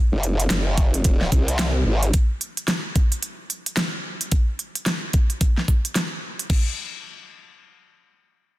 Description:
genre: glitch hop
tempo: 110 BPM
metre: 4/4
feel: swing 60% on 16ths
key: unclear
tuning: A4 = 439 Hz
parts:
  - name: growl bass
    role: bass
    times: 0.1-2.1 s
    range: Gb1 to C2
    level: -21 LUFS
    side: equal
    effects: chorus
  - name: pop drum kit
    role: drums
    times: 0.2-6.6 s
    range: crash cymbal, hi-hat, snare drum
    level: -26 LUFS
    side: equal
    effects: none
  - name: electronic kick drum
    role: drums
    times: 0.8-6.6 s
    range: none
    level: -18 LUFS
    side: equal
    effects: none
room: digital ambience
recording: dense, heavily limited modern master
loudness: -20 LUFS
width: side -17 dB against mid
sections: 0.0-6.5 A section; 6.5-8.6 B section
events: none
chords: none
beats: 0.50 1.05 1.59 | 2.14 2.68 3.23 3.77 | 4.32 4.87 5.41 5.96 | 6.50

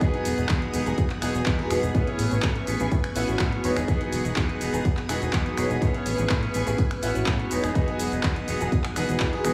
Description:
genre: filtered disco house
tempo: 124 BPM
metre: 4/4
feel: straight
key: E major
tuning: A4 = 440 Hz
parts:
  - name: bright concert grand piano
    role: accompaniment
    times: 0.0-9.5 s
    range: B3 to C#5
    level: -32 LUFS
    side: equal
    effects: phaser, sidechain pumping
  - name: string machine, full ensemble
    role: sustained chords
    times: 0.0-9.5 s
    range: G#4 to D#6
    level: -38 LUFS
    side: equal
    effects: ensemble chorus, sidechain pumping
  - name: electric guitar with an envelope filter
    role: riff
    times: 0.0-9.5 s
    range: E3 to G#4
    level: -34 LUFS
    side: equal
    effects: vintage 12-bit sampler grit, sidechain pumping
  - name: fat analog bass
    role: bass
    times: 0.0-9.5 s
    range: E1 to A2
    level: -30 LUFS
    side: equal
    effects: tube saturation, sidechain pumping
  - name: electronic kick drum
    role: drums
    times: 0.0-9.3 s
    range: none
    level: -28 LUFS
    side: equal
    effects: none
  - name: house drum kit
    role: drums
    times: 0.0-9.5 s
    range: finger snaps, handclaps, hi-hat, shaker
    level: -34 LUFS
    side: equal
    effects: sidechain pumping on hats, sidechain pumping on perc
room: light reverb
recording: studio reverb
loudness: -25 LUFS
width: mono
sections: 0.0-9.5 A section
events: none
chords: 0.0 Emaj9; 1.9 Amaj9; 3.6 Emaj9; 5.8 Amaj9; 7.5 Emaj9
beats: | 0.01 0.50 0.98 1.46 | 1.95 2.43 2.92 3.40 | 3.88 4.37 4.85 5.33 | 5.82 6.30 6.79 7.27 | 7.75 8.24 8.72 9.21

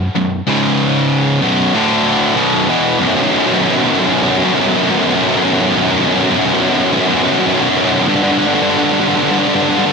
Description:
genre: metal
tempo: 94 BPM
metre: 4/4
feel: straight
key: B minor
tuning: A4 = 439 Hz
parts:
  - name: high-gain distorted guitar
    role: solo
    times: 0.0-9.9 s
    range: B1 to E3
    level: -11 LUFS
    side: equal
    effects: distortion, tape echo
room: light reverb, digital ambience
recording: none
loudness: -11 LUFS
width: side -4 dB against mid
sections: 0.0-3.0 A section; 3.0-9.9 B section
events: half time 3.0-9.9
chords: 0.5 C#5; 1.4 B5; 1.7 D5; 2.4 B5; 8.1 G5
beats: | 0.45 1.09 1.72 2.36 | 2.99 3.63 4.26 4.90 | 5.53 6.17 6.80 7.44 | 8.08 8.71 9.35

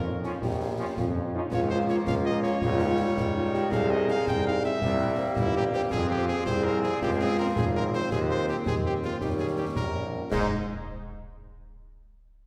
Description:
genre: military-style march for wind band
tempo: 109 BPM (dotted quarters)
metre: 6/8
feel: straight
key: Ab major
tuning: A4 = 440 Hz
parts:
  - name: mellow cornet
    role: melody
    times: 0.0-10.5 s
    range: E4 to G5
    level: -35 LUFS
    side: equal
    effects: none
  - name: warm euphonium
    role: second line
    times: 0.0-10.0 s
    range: C4 to Ab4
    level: -34 LUFS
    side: equal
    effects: none
  - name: clear tuba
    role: bass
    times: 0.0-10.5 s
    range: G1 to Ab2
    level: -31 LUFS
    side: equal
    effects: none
  - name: mellow French horn section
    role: accompaniment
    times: 0.1-10.5 s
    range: Eb3 to F4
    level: -40 LUFS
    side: equal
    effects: none
  - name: clear trombone section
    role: sustained chords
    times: 0.2-10.5 s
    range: Eb3 to Eb4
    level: -38 LUFS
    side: equal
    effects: none
  - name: concert snare drum, concert bass drum and clash cymbals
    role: drums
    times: 0.2-10.5 s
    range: none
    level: -35 LUFS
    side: equal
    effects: none
room: wet concert hall reverb, RT60 1.9 s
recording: heard from further back in the room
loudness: -27 LUFS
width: mono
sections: 0.0-10.3 A section; 10.3-11.4 B section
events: none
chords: 0.0 Bbm; 1.5 Bbm/Db; 2.6 Eb7/Db; 3.7 Ab/C; 4.8 C7; 5.9 Fm; 7.0 Dbmaj7; 8.1 Ab/Eb; 9.2 Eb7; 10.3 Ab5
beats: | 0.42 0.97 | 1.52 2.07 | 2.62 3.17 | 3.72 4.27 | 4.82 5.37 | 5.92 6.47 | 7.02 7.57 | 8.12 8.66 | 9.21 9.76 | 10.31

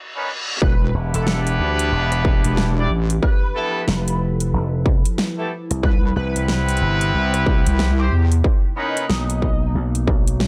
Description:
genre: glitch hop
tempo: 92 BPM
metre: 4/4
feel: swing 61% on 16ths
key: E phrygian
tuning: A4 = 440 Hz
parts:
  - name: reverse cymbal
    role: sound effects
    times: 0.0-0.6 s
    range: none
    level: -28 LUFS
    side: equal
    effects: none
  - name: bright horn section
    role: stabs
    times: 0.2-9.0 s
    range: A3 to D5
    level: -26 LUFS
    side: equal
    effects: sidechain pumping, analog delay
  - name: sync lead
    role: melody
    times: 0.6-9.7 s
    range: D#4 to B4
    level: -33 LUFS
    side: equal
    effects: ensemble chorus, analog delay
  - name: warbly tape-like pad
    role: sustained chords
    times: 1.5-10.5 s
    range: C3 to B4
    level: -33 LUFS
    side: equal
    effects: chorus, built-in reverb, vintage 12-bit sampler grit, sidechain pumping
  - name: wobble bass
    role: bass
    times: 0.6-8.4 s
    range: E1 to E2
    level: -20 LUFS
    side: equal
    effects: chorus, high-pass filter
  - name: electronic kick drum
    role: drums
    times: 0.6-10.2 s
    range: none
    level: -20 LUFS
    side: equal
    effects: distortion
  - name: slap bass with an envelope filter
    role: bass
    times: 0.9-10.5 s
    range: E1 to D2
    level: -23 LUFS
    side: equal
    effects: none
  - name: dubstep drum kit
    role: drums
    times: 1.1-10.5 s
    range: hi-hat, rim click, snare drum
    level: -26 LUFS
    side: equal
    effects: none
room: little or no reverb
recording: dry, gritty hardware recording, high-pass filter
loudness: -19 LUFS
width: mono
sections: 0.6-10.5 A section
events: break 0.0-0.6; reverse cymbal 0.0-0.6; drop 0.6-10.5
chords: 0.0 Bmaj9; 0.6 Em7; 3.2 Fmaj9#11; 5.8 Cmaj7; 8.4 Bmaj9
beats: | 0.62 1.27 1.92 2.57 | 3.23 3.88 4.53 5.18 | 5.83 6.49 7.14 7.79 | 8.44 9.10 9.75 10.40

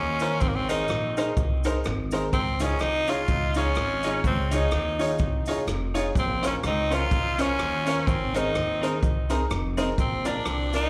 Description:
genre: ska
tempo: 126 BPM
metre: 4/4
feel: swing 58% on 8ths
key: unclear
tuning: A4 = 440 Hz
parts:
  - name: raspy tenor saxophone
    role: melody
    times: 0.0-10.9 s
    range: Bb3 to F4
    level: -30 LUFS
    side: equal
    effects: tape echo, plate reverb, slapback echo
  - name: upright bass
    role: bass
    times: 0.0-10.9 s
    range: F1 to Eb2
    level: -31 LUFS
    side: equal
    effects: none
  - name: clean electric guitar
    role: accompaniment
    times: 0.2-10.8 s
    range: C4 to Db5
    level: -36 LUFS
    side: equal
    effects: tape echo, plate reverb, slapback echo
  - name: clear upright piano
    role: stabs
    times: 0.2-10.9 s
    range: Db4 to D5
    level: -33 LUFS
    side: equal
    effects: tape echo, plate reverb, slapback echo
  - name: swinging big-band drum kit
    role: drums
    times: 0.2-10.8 s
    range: hi-hat, kick drum, rim click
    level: -33 LUFS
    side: equal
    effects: none
  - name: cabasa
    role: percussion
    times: 0.2-10.8 s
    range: none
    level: -48 LUFS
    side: equal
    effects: none
room: moderate club reverb, RT60 0.6 s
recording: live gig heard through the venue's PA, club reverb, vinyl crackle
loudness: -25 LUFS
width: mono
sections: 0.0-10.9 A section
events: none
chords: 0.4 Abadd9; 2.3 Dbadd9; 6.2 Bbmadd9; 8.1 Abadd9; 10.0 Bb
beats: | 0.41 0.90 1.37 1.85 | 2.33 2.81 3.29 3.77 | 4.25 4.73 5.21 5.68 | 6.16 6.64 7.12 7.59 | 8.07 8.55 9.03 9.50 | 9.98 10.46

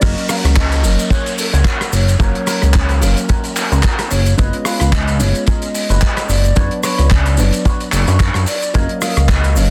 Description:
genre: nu-disco, nu disco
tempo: 110 BPM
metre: 4/4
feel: swing 56% on 16ths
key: F# major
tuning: A4 = 440 Hz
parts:
  - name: mellow hollow silver concert flute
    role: melody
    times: 0.0-9.7 s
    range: A#4 to E#5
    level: -27 LUFS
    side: equal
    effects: tape echo
  - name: dark grand piano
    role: accompaniment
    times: 0.0-9.7 s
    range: F#3 to E#5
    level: -26 LUFS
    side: equal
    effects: sidechain pumping
  - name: electric guitar with an envelope filter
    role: riff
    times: 0.0-9.6 s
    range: C#4 to D#5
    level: -30 LUFS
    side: equal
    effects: lush chorus
  - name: chorused synth bass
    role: bass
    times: 0.0-9.7 s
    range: F#1 to F#2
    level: -16 LUFS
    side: equal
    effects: none
  - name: damped 70s drum kit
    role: drums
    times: 0.0-9.7 s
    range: crash cymbal, handclaps, hi-hat, rim click, shaker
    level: -23 LUFS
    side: equal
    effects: small room ambience
  - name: kick drum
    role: drums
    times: 0.0-9.4 s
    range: none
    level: -17 LUFS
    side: equal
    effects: small room ambience
  - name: egg shaker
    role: percussion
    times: 0.0-9.7 s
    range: none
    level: -34 LUFS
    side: equal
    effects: none
  - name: downlifter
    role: sound effects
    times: 0.0-4.4 s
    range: none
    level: -32 LUFS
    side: equal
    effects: none
room: small room ambience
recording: dense, heavily limited modern master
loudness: -15 LUFS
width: mono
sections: 0.0-9.7 A section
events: drop 0.0-9.7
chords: 0.0 F#maj7; 4.4 C#7/F#; 6.6 Bmadd9/F#; 8.7 F#maj7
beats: | 0.02 0.56 1.11 1.66 | 2.20 2.75 3.29 3.84 | 4.38 4.93 5.47 6.02 | 6.57 7.11 7.66 8.20 | 8.75 9.29

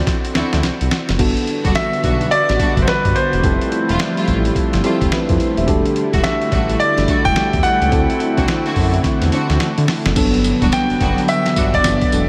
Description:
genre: R&B, new jack swing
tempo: 107 BPM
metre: 4/4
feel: swing 63% on 16ths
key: G major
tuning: A4 = 440 Hz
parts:
  - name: tine electric piano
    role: accompaniment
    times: 0.0-12.3 s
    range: F#3 to E5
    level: -25 LUFS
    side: equal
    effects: subtle chorus
  - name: dusty soul sampler-style drum kit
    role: drums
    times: 0.1-12.3 s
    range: crash cymbal, hi-hat, kick drum, snare drum, tambourine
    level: -22 LUFS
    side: equal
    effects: none
  - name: warm studio string section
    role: stabs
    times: 0.3-11.8 s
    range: G3 to F#4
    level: -27 LUFS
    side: equal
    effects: delay
  - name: smooth synth bass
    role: bass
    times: 0.4-12.3 s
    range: Eb1 to D3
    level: -22 LUFS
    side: equal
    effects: none
  - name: brassy analog pad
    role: sustained chords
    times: 1.2-12.3 s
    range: D3 to F#4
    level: -24 LUFS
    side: equal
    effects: chorus
  - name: clear baby grand piano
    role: melody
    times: 1.8-12.3 s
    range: B4 to G5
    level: -23 LUFS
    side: equal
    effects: delay
room: moderate huge ambient reverb, RT60 8.0 s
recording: dreamy mix soaked in reverb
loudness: -16 LUFS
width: mono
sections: 0.0-1.2 A section; 1.2-10.2 B section; 10.2-12.3 C section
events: drum fill 0.0-1.2, 9.0-10.2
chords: 0.0 D9; 1.2 Gmaj7; 3.4 Fmaj9; 5.7 Em11; 7.9 D7; 10.2 Gmaj7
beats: 0.07 0.63 | 1.19 1.75 2.31 2.87 | 3.43 4.00 4.55 5.12 | 5.68 6.24 6.80 7.36 | 7.92 8.48 9.04 9.60 | 10.16 10.72 11.28 11.85

